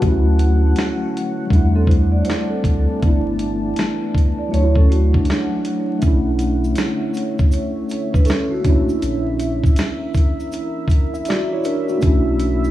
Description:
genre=lo-fi hip hop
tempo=80 BPM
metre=4/4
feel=swing 64% on 16ths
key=unclear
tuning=A4 = 440 Hz
part: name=mellow tine electric piano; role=accompaniment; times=0.0-12.7 s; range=F#3 to E5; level=-21 LUFS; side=equal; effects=medium stereo tremolo, cassette tape, low-pass filter
part: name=deep dark ambient pad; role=sustained chords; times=0.0-12.7 s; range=D3 to A5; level=-29 LUFS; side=equal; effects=chorus, built-in reverb, low-pass filter
part: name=warm sub bass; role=bass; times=0.0-12.7 s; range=G1 to E2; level=-18 LUFS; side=equal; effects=none
part: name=dusty soul sampler-style drum kit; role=drums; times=0.0-12.6 s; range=hi-hat, kick drum, snare drum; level=-18 LUFS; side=equal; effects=none
part: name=vibraphone with soft mallets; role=second line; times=1.8-8.9 s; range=F#3 to D5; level=-25 LUFS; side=right 1 dB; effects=low-pass filter, tape echo
part: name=tube shaker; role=percussion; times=6.0-12.7 s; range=none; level=-46 LUFS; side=right 6 dB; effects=none
room=little or no reverb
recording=vinyl crackle, small room ambience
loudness=-16 LUFS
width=side -14 dB against mid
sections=0.0-6.0 A section; 6.0-12.7 B section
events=none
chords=0.0 Dmaj7; 1.5 D9sus4; 3.0 G69; 4.5 Dmaj7; 6.0 Bm11; 8.6 F#7b13/A#; 12.0 Bm11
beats=| 0.02 0.77 1.52 2.27 | 3.02 3.77 4.52 5.27 | 6.02 6.77 7.52 8.27 | 9.02 9.77 10.52 11.27 | 12.02

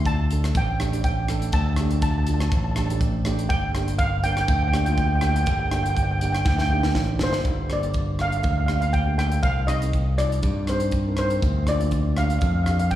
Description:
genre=calypso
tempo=121 BPM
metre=4/4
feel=swing 54% on 16ths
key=G minor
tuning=A4 = 441 Hz
part: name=steel pan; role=melody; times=0.0-13.0 s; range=C5 to A5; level=-27 LUFS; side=right 1 dB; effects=plate reverb, slapback echo, digital delay
part: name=steel pan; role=accompaniment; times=0.0-12.9 s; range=A3 to Bb4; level=-31 LUFS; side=right 1 dB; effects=slapback echo
part: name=modern bright fingered electric bass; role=bass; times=0.0-13.0 s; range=G1 to G2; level=-23 LUFS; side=equal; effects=none
part: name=crisp fusion drum kit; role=drums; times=0.1-13.0 s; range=hi-hat, kick drum, rim click, snare drum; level=-27 LUFS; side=equal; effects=none
room=light reverb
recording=live gig heard through the venue's PA, recital hall reverb, studio reverb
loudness=-20 LUFS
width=side -13 dB against mid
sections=0.0-7.5 A section; 7.5-13.0 B section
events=drum fill 6.5-7.5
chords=0.0 Dsus4; 3.5 Gm; 9.4 Cmadd9; 11.4 Bb/D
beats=0.05 0.54 1.04 | 1.53 2.02 2.52 3.01 | 3.50 4.00 4.49 4.98 | 5.48 5.97 6.46 6.96 | 7.46 7.95 8.45 8.94 | 9.44 9.94 10.43 10.93 | 11.43 11.92 12.42 12.92

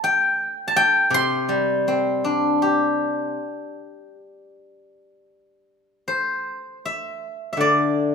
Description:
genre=chinese traditional, Chinese solo plucked strings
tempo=80 BPM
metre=4/4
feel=rubato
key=C gong mode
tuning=A4 = 440 Hz
part: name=steel-string zither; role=solo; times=0.0-8.1 s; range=C3 to C6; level=-19 LUFS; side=left 1 dB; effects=none
room=light reverb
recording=minimal, uncompressed stereo recording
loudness=-19 LUFS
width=side -5 dB against mid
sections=0.0-6.1 A section; 6.1-8.1 B section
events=none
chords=none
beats=| 0.02 0.75 1.50 2.25 | 3.00 3.74 4.50 5.29 | 6.07 6.84 7.60

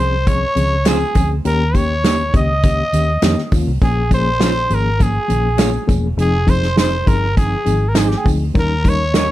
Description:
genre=uptempo 1960s-style soul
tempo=101 BPM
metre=4/4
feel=straight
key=unclear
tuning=A4 = 440 Hz
part: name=growling trumpet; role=melody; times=0.0-9.3 s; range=G4 to Eb5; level=-20 LUFS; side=equal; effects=none
part: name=vibraphone with medium hard mallets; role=second line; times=0.0-9.3 s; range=G5 to Eb6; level=-30 LUFS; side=right 5 dB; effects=none
part: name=mellow reed electric piano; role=accompaniment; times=0.0-9.3 s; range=Eb3 to Bb4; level=-21 LUFS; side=left 3 dB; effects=fast tremolo
part: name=vintage muted fingered electric bass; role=bass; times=0.0-9.3 s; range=Fb1 to F2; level=-19 LUFS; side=equal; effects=none
part: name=natural country drum kit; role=drums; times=0.3-9.3 s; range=hi-hat, kick drum, snare drum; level=-17 LUFS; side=equal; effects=none
part: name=congas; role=percussion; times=0.3-9.3 s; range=none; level=-31 LUFS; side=right 4 dB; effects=none
part: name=tambourine and handclaps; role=percussion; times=0.3-9.3 s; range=none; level=-33 LUFS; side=left 3 dB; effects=none
part: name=electric guitar at the edge of break-up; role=stabs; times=0.9-9.3 s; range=Bb3 to Eb5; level=-24 LUFS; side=right 8 dB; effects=analog delay
room=light reverb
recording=dark, warm production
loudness=-13 LUFS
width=side -14 dB against mid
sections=0.0-9.3 A section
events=none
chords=0.0 Dbmaj7; 1.4 Eb7; 3.8 Bbm7; 6.2 Fm7; 8.6 Eb7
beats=0.26 0.85 | 1.45 2.04 2.63 3.22 | 3.81 4.41 5.00 5.59 | 6.18 6.78 7.37 7.96 | 8.55 9.15

